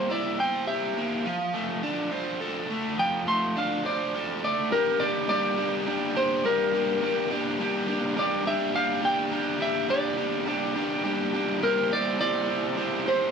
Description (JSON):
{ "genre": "rock", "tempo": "70 BPM (dotted quarters)", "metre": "6/8", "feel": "straight", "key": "G dorian", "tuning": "A4 = 443 Hz", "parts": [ { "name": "clean electric guitar", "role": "melody", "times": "0.0-13.3 s", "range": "Bb4 to C6", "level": "-27 LUFS", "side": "equal", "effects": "none" }, { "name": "biting overdriven guitar", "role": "riff", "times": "0.0-13.3 s", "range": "F3 to C5", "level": "-27 LUFS", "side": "equal", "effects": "spring reverb" } ], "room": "digital ambience", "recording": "dry, close 1970s-style studio recording", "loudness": "-24 LUFS", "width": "side -6 dB against mid", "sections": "0.0-4.7 A section; 4.7-13.3 B section", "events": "clean electric guitar solo 0.0-4.7", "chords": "0.0 C7/G; 1.3 F6; 4.7 Gm; 11.6 C7/G", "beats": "0.39 | 1.25 2.12 | 2.99 3.85 | 4.72 5.58 | 6.45 7.31 | 8.17 9.03 | 9.89 10.76 | 11.62 12.48" }